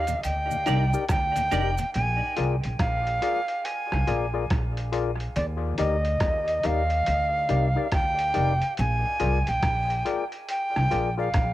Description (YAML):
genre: dub reggae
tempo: 70 BPM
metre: 4/4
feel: swing 63% on 16ths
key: Eb major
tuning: A4 = 440 Hz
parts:
  - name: breathy bright jazz flute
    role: melody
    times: 0.0-11.5 s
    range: D5 to Ab5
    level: -26 LUFS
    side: right 1 dB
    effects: cassette tape, dub echo
  - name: semi-hollow electric guitar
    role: accompaniment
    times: 0.0-1.8 s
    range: Eb4 to D5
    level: -36 LUFS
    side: right 6 dB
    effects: ensemble chorus, dub echo
  - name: upright bass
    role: bass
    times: 0.0-11.5 s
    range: F1 to Eb2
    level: -27 LUFS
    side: equal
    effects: none
  - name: mellow tonewheel organ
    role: accompaniment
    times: 0.1-1.9 s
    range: Eb2 to G4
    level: -38 LUFS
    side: left 6 dB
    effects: none
  - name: lo-fi sampler-style drum kit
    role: drums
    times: 0.1-11.5 s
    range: hi-hat, kick drum, rim click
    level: -30 LUFS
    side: equal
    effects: overdrive, cassette tape
  - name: cabasa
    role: percussion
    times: 0.1-1.9 s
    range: none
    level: -45 LUFS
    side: right 10 dB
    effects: none
  - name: percussive organ stab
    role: stabs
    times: 0.7-11.3 s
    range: Eb4 to D5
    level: -31 LUFS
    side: left 7 dB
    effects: chorus, dub echo
room: light reverb, digital ambience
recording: home recording on cassette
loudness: -23 LUFS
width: side -15 dB against mid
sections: 0.0-11.5 A section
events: part muted 1.9-11.5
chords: 0.0 Ebmaj7; 1.9 Bb7; 5.4 Ebmaj7; 8.8 Bb7